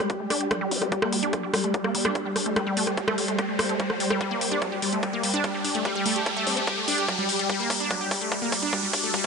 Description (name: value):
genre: psychedelic trance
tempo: 146 BPM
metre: 4/4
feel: straight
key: unclear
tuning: A4 = 442 Hz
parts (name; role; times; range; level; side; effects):
- swarming drone; sustained chords; 0.0-9.3 s; G3 to C5; -30 LUFS; equal; built-in reverb, phaser, sidechain pumping
- wide unison pluck; riff; 0.0-9.3 s; F#3 to G4; -28 LUFS; equal; auto-pan, sidechain pumping, tape echo
- drum and bass drum kit; drums; 0.0-9.2 s; hi-hat, rim click; -28 LUFS; left 1 dB; overdrive
- riser; sound effects; 0.2-9.3 s; none; -31 LUFS; equal; none
- electronic kick drum; drums; 0.1-9.3 s; none; -28 LUFS; equal; overdrive, high-pass filter on kick
- vowel-sweep wobble bass; second line; 0.7-0.9, 6.5-6.6 s; C4; -38 LUFS; left 4 dB; chorus, vintage 12-bit sampler grit, sidechain pumping, high-pass filter, dub echo
room: moderate plate reverb, RT60 1.4 s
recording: nothing above 10.6 kHz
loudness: -23 LUFS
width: side -5 dB against mid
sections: 0.0-9.3 A section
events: build-up 0.0-9.3; filter sweep on synth arpeggio sound 0.0-9.3; filter sweep on synth drone 0.0-9.3; riser 0.2-9.3; drum fill 4.2-9.3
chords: 0.0 G5